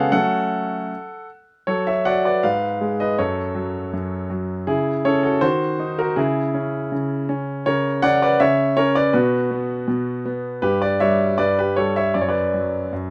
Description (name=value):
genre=classical-period piano sonatina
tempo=80 BPM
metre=2/4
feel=straight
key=F# minor, B minor from 7.7 s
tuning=A4 = 440 Hz
part: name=clear concert grand piano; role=solo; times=0.0-13.1 s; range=F#2 to F#5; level=-21 LUFS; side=equal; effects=none
room=light reverb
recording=none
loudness=-21 LUFS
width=mono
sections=0.0-1.7 A section; 1.7-13.1 B section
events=none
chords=0.1 F#m; 2.4 Fdim/Ab; 3.2 F#m; 4.7 C#m; 5.4 Cdim/Eb; 6.2 C#m; 7.7 C#m6; 9.1 B5; 10.6 G6; 12.1 Bm/F#